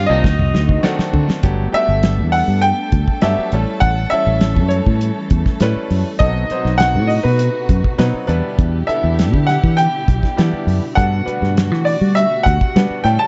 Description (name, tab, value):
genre	electric jazz fusion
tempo	101 BPM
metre	4/4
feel	straight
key	G major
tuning	A4 = 439 Hz
part	clear grand piano	melody	0.0-13.3 s	B4 to A5	-21 LUFS	equal	slapback echo
part	crunchy overdriven guitar	second line	0.0-0.8 s	Eb4	-29 LUFS	equal	phaser
part	warm studio string section	sustained chords	0.0-13.3 s	B2 to A4	-29 LUFS	equal	none
part	fingered electric bass	bass	0.0-13.2 s	G1 to G3	-19 LUFS	equal	none
part	bright grand piano	accompaniment	0.1-13.3 s	Eb3 to C5	-27 LUFS	equal	none
part	damped 70s drum kit	drums	0.2-13.2 s	hi-hat, kick drum, snare drum, toms	-20 LUFS	equal	none
room	small room ambience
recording	dark, warm production, nothing above 7.8 kHz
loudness	-16 LUFS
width	mono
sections	0.0-1.4 A section; 1.4-13.3 B section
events	drum fill 0.0-1.4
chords	0.2 D7b9; 1.4 Gmaj9; 3.5 A7; 6.2 B7b9; 8.3 Em7; 11.0 Gmaj9